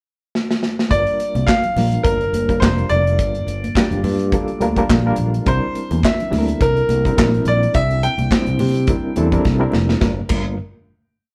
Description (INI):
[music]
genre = disco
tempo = 105 BPM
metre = 4/4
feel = swing 56% on 16ths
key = G dorian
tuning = A4 = 439 Hz
[part]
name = modern studio drum kit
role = drums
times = 0.3-10.4 s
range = crash cymbal, handclaps, hi-hat, kick drum, snare drum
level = -22 LUFS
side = equal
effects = none
[part]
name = clear grand piano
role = melody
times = 0.9-9.1 s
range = Bb4 to G5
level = -23 LUFS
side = equal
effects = none
[part]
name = reed electric piano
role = accompaniment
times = 0.9-10.6 s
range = G3 to C5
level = -25 LUFS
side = equal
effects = fast tremolo
[part]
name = fingered electric bass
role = bass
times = 0.9-10.6 s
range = F1 to C3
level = -22 LUFS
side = equal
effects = none
[part]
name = congas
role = percussion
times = 1.2-10.6 s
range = none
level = -30 LUFS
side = equal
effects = none
[sound]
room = moderate studio reverb, RT60 0.6 s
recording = band playing live in one room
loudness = -18 LUFS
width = mono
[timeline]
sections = 0.0-0.9 pickup bar; 0.9-10.0 groove; 10.0-11.3 final chord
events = drum fill 0.3-0.9, 9.5-10.0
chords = 0.0 N.C.; 0.9 Gm7; 5.5 C9; 10.0 Gm7